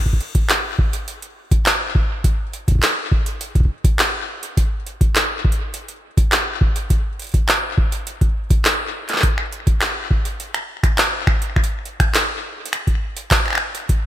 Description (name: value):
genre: IDM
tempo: 103 BPM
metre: 4/4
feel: straight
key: none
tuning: none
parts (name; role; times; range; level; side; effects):
- electronic kick drum; drums; 0.1-14.0 s; none; -17 LUFS; equal; overdrive
- booming analog drum machine; drums; 0.2-14.0 s; finger snaps, handclaps, hi-hat; -20 LUFS; equal; overdrive, ping-pong delay
room: light reverb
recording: bright 1980s-style digital production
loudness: -17 LUFS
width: side -13 dB against mid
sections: 0.0-14.1 A section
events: none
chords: none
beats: 0.49 1.08 1.66 | 2.24 2.83 3.41 3.99 | 4.57 5.16 5.74 6.32 | 6.90 7.49 8.07 8.65 | 9.23 9.81 10.40 10.98 | 11.56 12.15 12.73 13.31 | 13.89